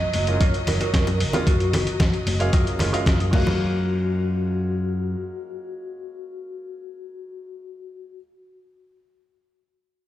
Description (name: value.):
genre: nu-disco, nu disco.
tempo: 113 BPM.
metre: 4/4.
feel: straight.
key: F# major.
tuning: A4 = 440 Hz.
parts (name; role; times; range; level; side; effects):
vibraphone with medium mallets; melody; 0.0-8.2 s; F#4 to D#5; -30 LUFS; left 1 dB; tape echo.
bright symphonic string section; sustained chords; 0.0-3.3 s; F#3 to D#5; -34 LUFS; left 2 dB; sidechain pumping.
picked electric bass; bass; 0.1-5.1 s; F#1 to F#2; -24 LUFS; equal; tube saturation.
dusty soul sampler-style drum kit; drums; 0.1-3.4 s; crash cymbal, hi-hat, snare drum; -28 LUFS; left 1 dB; overdrive.
congas and bongos; percussion; 0.1-3.6 s; none; -29 LUFS; equal; none.
warm grand piano; accompaniment; 0.3-8.2 s; G#3 to E#5; -31 LUFS; right 2 dB; sidechain pumping.
electric guitar with an envelope filter; riff; 0.4-8.2 s; E#4 to D#5; -34 LUFS; right 2 dB; lush chorus.
electronic kick drum; drums; 0.4-3.4 s; none; -21 LUFS; equal; none.
room: light reverb.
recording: played on a big sound system in a bare room, stone room reverb.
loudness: -19 LUFS.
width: side -13 dB against mid.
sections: 0.0-3.6 A section; 3.6-7.8 B section.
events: drop 0.0-3.6.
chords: 0.0 F#maj7.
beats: 0.41 0.94 | 1.47 2.00 2.53 3.06 | 3.59 4.12 4.66 5.19 | 5.72 6.25 6.78 7.31.